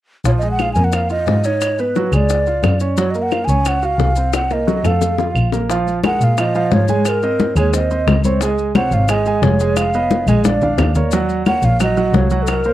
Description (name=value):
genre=Afro-Cuban jazz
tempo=177 BPM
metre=4/4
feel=straight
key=Bb minor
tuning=A4 = 439 Hz
part: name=warm double bass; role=bass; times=0.2-12.7 s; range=F1 to Bb2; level=-18 LUFS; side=equal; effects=none
part: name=maracas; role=percussion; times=0.2-12.7 s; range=none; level=-33 LUFS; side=left 8 dB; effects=none
part: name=breathy mellow concert flute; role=melody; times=0.3-12.7 s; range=A4 to Ab5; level=-20 LUFS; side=right 1 dB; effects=tape echo
part: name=warm concert grand piano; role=accompaniment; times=0.3-12.7 s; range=C3 to Ab5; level=-20 LUFS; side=right 3 dB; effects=none
part: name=bongos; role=percussion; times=0.3-12.7 s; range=none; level=-24 LUFS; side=left 10 dB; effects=none
part: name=claves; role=percussion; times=0.6-12.7 s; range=none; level=-29 LUFS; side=right 4 dB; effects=none
part: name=congas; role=percussion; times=5.7-12.7 s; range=none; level=-20 LUFS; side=left 3 dB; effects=none
room=little or no reverb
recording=dry, close 1970s-style studio recording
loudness=-14 LUFS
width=side -14 dB against mid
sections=0.3-5.7 A section; 5.7-12.7 B section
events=drum fill 4.3-5.7, 10.3-11.1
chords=0.3 Bb5; 1.6 Abm7; 2.3 Db; 3.0 Gbmaj7#11; 4.3 Cm7b5; 5.0 F; 5.7 Bbm7; 7.1 Ab; 8.4 Dbmaj9; 9.8 Fm7b5; 10.4 Bb; 11.1 Ebm7